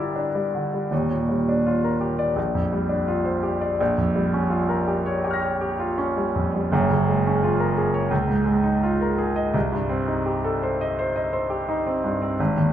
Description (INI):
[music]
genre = classical, impressionist solo piano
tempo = 84 BPM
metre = 4/4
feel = rubato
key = unclear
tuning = A4 = 442 Hz
[part]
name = warm grand piano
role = solo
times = 0.0-12.7 s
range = Eb1 to Bb6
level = -20 LUFS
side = equal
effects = none
[sound]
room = moderate recital hall reverb, RT60 1.7 s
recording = minimal, uncompressed stereo recording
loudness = -20 LUFS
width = side -10 dB against mid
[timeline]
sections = 0.0-12.7 A section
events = none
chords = 0.0 Gm6; 0.9 Ebmaj9; 2.4 Bb69; 3.8 Bbm6; 6.7 F#maj9; 8.1 C#69; 9.6 Cm6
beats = 0.16 | 0.92 1.66 2.37 3.08 | 3.80 4.52 5.24 5.97 | 6.72 7.44 8.12 8.83 | 9.55 10.27 10.98 11.68 | 12.39